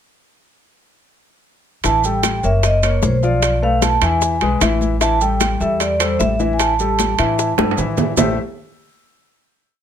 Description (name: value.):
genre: Afro-Cuban jazz.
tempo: 152 BPM.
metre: 4/4.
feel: straight.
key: unclear.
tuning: A4 = 441 Hz.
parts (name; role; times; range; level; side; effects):
warm grand piano; accompaniment; 1.8-8.4 s; E3 to F5; -21 LUFS; left 5 dB; none.
upright bass; bass; 1.8-8.4 s; F#1 to A2; -20 LUFS; equal; none.
bongos; percussion; 1.8-8.3 s; none; -24 LUFS; left 11 dB; none.
congas; percussion; 1.8-8.3 s; none; -25 LUFS; left 3 dB; none.
maracas; percussion; 1.8-8.3 s; none; -26 LUFS; right 7 dB; none.
timbales; percussion; 1.8-8.3 s; none; -22 LUFS; right 9 dB; none.
vibraphone with medium hard mallets; melody; 1.9-7.7 s; C5 to A5; -19 LUFS; right 2 dB; none.
room: little or no reverb.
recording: close, detailed microphones.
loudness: -14 LUFS.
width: side -9 dB against mid.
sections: 1.8-8.2 A section; 8.2-9.8 final chord.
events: drum fill 7.6-8.2.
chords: 1.8 A5; 2.6 F#; 3.4 Dm69/B; 4.2 E; 5.0 A5; 8.2 Am7.